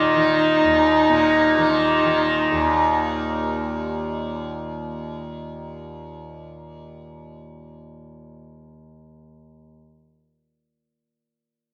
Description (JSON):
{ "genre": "indian classical", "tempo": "119 BPM", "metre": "7/4", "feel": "straight", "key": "unclear", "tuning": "A4 = 440 Hz", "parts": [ { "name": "rich sarangi", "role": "melody", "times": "0.0-3.5 s", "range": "Eb4", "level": "-21 LUFS", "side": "equal", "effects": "none" }, { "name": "tanpura", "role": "drone", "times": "0.0-9.7 s", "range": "Eb2 to Eb3", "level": "-26 LUFS", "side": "equal", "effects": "none" } ], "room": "wet club reverb, RT60 0.5 s", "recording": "none", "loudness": "-20 LUFS", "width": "mono", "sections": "0.0-2.7 A section", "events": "none", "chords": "none" }